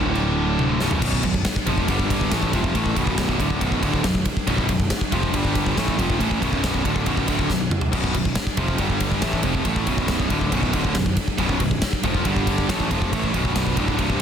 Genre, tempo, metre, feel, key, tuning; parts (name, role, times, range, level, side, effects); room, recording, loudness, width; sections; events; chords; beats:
heavy metal; 139 BPM; 4/4; straight; B minor; A4 = 440 Hz
fuzz guitar; riff; 0.0-14.2 s; B1 to A3; -28 LUFS; right 1 dB; distortion
heavy high-gain guitar; riff; 0.0-14.2 s; B1 to A3; -27 LUFS; left 10 dB; distortion
tight distorted guitar; riff; 0.0-14.2 s; B1 to A3; -27 LUFS; right 10 dB; distortion
fuzz picked electric bass; bass; 0.0-14.2 s; B0 to A1; -27 LUFS; equal; overdrive
big rock drum kit; drums; 0.2-14.2 s; crash cymbal, kick drum, ride cymbal, snare drum, toms; -23 LUFS; equal
light reverb; dense, heavily limited modern master; -19 LUFS; side -8 dB against mid
0.0-1.0 A section; 1.0-14.2 B section
drum fill 0.6-1.0, 7.5-7.9
0.0 D5; 0.8 B5; 1.9 G5; 2.3 Bm; 5.3 G5; 5.8 Bm; 8.8 G5; 9.2 Bm; 12.3 G5; 12.7 Bm
0.16 0.59 | 1.02 1.45 1.89 2.32 | 2.75 3.18 3.61 4.05 | 4.48 4.91 5.34 5.78 | 6.21 6.64 7.07 7.51 | 7.94 8.37 8.80 9.24 | 9.67 10.10 10.53 10.97 | 11.40 11.83 12.26 12.69 | 13.13 13.56 13.99